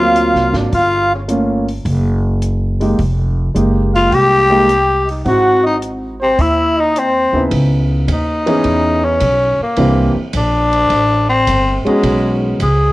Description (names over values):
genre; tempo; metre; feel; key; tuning
jazz, small-group swing and bop; 106 BPM; 4/4; swing 69% on 8ths; unclear; A4 = 440 Hz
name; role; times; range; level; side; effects
growling tenor saxophone; melody; 0.0-12.9 s; G#3 to G#4; -14 LUFS; left 1 dB; none
warm trumpet; second line; 0.0-7.4 s; C5 to G5; -19 LUFS; right 2 dB; none
warm grand piano; accompaniment; 0.0-12.6 s; Db3 to B4; -17 LUFS; right 1 dB; none
upright bass; bass; 0.0-12.9 s; F1 to E2; -17 LUFS; equal; none
compact cocktail drum kit; drums; 0.2-12.8 s; hi-hat, kick drum, ride cymbal, snare drum; -26 LUFS; right 1 dB; none
room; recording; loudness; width
light reverb; worn, warbling old tape, cassette tape, warbly pitch drift; -12 LUFS; side -18 dB against mid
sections
0.0-7.5 A section; 7.5-12.9 B section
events
tenor saxophone solo 7.5-12.9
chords
0.0 D7alt; 0.7 Gm7b5; 1.9 Gbadd9; 3.0 Fm11; 5.3 Ab7b13; 7.5 C#m9; 9.8 C9; 12.0 B69